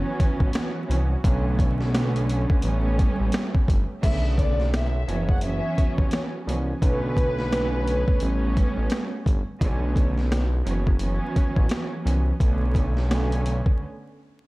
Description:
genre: hip hop, boom-bap hip-hop.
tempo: 86 BPM.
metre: 4/4.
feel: swing 60% on 16ths.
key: B minor.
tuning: A4 = 440 Hz.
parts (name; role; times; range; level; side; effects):
warm studio string section; accompaniment; 0.0-13.8 s; C#3 to C#4; -28 LUFS; right 2 dB; cassette tape, high-pass filter, low-pass filter.
lush unison pad; sustained chords; 0.0-4.0 s; D3 to G4; -39 LUFS; equal; chorus, high-pass filter, low-pass filter.
smooth synth bass; bass; 0.0-13.6 s; F#1 to C2; -24 LUFS; equal; none.
boom bap sampler-style drum kit; drums; 0.2-13.8 s; crash cymbal, hi-hat, kick drum, snare drum; -23 LUFS; equal; none.
warm studio violin section; melody; 4.0-8.9 s; B4 to F#5; -30 LUFS; left 1 dB; high-pass filter, low-pass filter, slapback echo.
room: digital ambience.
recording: dark, warm production, vinyl crackle.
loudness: -21 LUFS.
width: side -20 dB against mid.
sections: 0.0-4.0 A section; 4.0-14.5 B section.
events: break 13.8-14.5.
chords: 0.0 F#7sus4; 1.2 Bm9; 2.6 A9; 4.0 Bm9; 5.1 F#7sus4; 6.8 Bm9; 8.2 A9; 9.6 Bm9; 10.7 F#7sus4; 12.4 Bm9; 13.8 N.C..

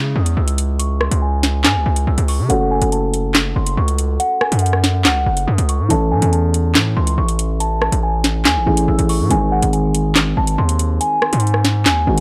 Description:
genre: hip hop, drill.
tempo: 141 BPM.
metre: 4/4.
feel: half-time.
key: C# harmonic minor.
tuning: A4 = 440 Hz.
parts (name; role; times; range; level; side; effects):
glassy synth bell; melody; 0.0-12.2 s; F#5 to E6; -25 LUFS; equal; chorus, phaser, low-pass filter, tape echo.
dark concert grand piano; accompaniment; 0.0-12.2 s; D#3 to A4; -24 LUFS; equal; low-pass filter.
distorted 808-style bass; bass; 0.0-12.2 s; F#1 to C#3; -20 LUFS; equal; distortion.
drill drum kit; drums; 0.3-12.2 s; handclaps, hi-hat, rim click, snare drum; -20 LUFS; equal; none.
room: digital ambience.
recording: dry, gritty hardware recording, cassette tape.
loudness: -17 LUFS.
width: mono.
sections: 0.0-12.2 A section.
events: filter sweep 0.0-12.2.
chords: 0.0 C#m; 2.5 F#m; 5.9 A; 9.3 G#.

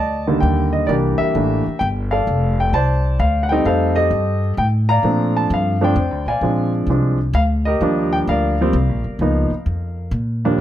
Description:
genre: jazz piano trio.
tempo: 130 BPM.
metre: 3/4.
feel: swing 68% on 8ths.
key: unclear.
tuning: A4 = 435 Hz.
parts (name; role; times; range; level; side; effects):
warm concert grand piano; melody; 0.0-10.6 s; Eb2 to Bb5; -18 LUFS; equal; none.
upright bass; bass; 0.0-10.6 s; F1 to Bb2; -19 LUFS; equal; none.
room: light reverb.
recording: close, detailed microphones.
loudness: -16 LUFS.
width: side -12 dB against mid.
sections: 0.0-10.6 A section.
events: none.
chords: 0.0 Ebmaj7#11/D; 0.9 C13; 2.3 F69; 5.0 Bbmaj9; 6.4 Bb7; 7.8 Ebmaj9; 9.2 Db13; 10.1 Bb.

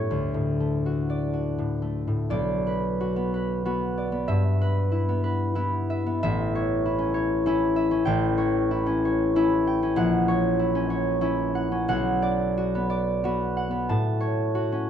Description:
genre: classical, solo harp piece.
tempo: 79-98 BPM.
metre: 3/4.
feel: rubato.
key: unclear.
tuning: A4 = 440 Hz.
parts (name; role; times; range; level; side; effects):
concert harp; solo; 0.0-14.9 s; A1 to A5; -22 LUFS; equal; none.
room: light reverb.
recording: dark, warm production.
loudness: -22 LUFS.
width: side -9 dB against mid.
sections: 0.0-2.3 A section; 2.3-14.9 B section.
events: none.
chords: 0.1 D; 2.3 Bm; 4.3 Em/G; 6.2 A; 8.1 A7; 10.0 F#7/A#; 11.9 Bm; 13.9 F#m/A.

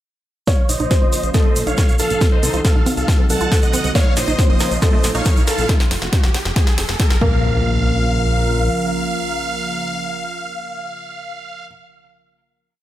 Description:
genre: uplifting trance.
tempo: 138 BPM.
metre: 4/4.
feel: straight.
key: Bb harmonic minor.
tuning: A4 = 439 Hz.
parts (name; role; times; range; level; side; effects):
big supersaw lead; melody; 0.5-11.7 s; Eb4 to A5; -24 LUFS; right 1 dB; phaser, sidechain pumping, low-pass filter, tape echo.
felt-muted upright piano; second line; 0.5-11.7 s; A4 to Db5; -25 LUFS; right 1 dB; dub echo.
lush unison pad; sustained chords; 0.5-11.7 s; Bb2 to Bb4; -26 LUFS; equal; chorus, sidechain pumping.
wide unison pluck; arpeggios; 0.5-7.6 s; Bb2 to C5; -27 LUFS; right 2 dB; vintage 12-bit sampler grit, sidechain pumping, dub echo.
electronic kick drum; drums; 0.5-7.3 s; none; -15 LUFS; equal; none.
techno drum kit; drums; 0.5-7.2 s; hi-hat, snare drum; -25 LUFS; equal; high-pass filter on snare, sidechain pumping on hats, high-pass filter on hats, high-pass filter on room.
egg shaker; percussion; 0.5-5.7 s; none; -27 LUFS; right 1 dB; none.
riser and impact; sound effects; 3.2-11.7 s; none; -28 LUFS; equal; none.
fat analog bass; bass; 0.7-8.7 s; Eb1 to C2; -22 LUFS; equal; sidechain pumping.
room: light reverb, digital ambience.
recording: none.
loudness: -15 LUFS.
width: side -13 dB against mid.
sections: 0.5-7.4 build; 7.4-10.9 final hit.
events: build-up 0.5-7.4; drum fill 0.5-7.4; filter sweep on supersaw synth 0.5-5.7; filter sweep on synth arpeggio sound 0.5-5.7; riser 3.2-7.4.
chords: 0.5 Bbm; 2.2 Cdim; 4.0 Bbm; 5.7 N.C.; 7.2 Bbm.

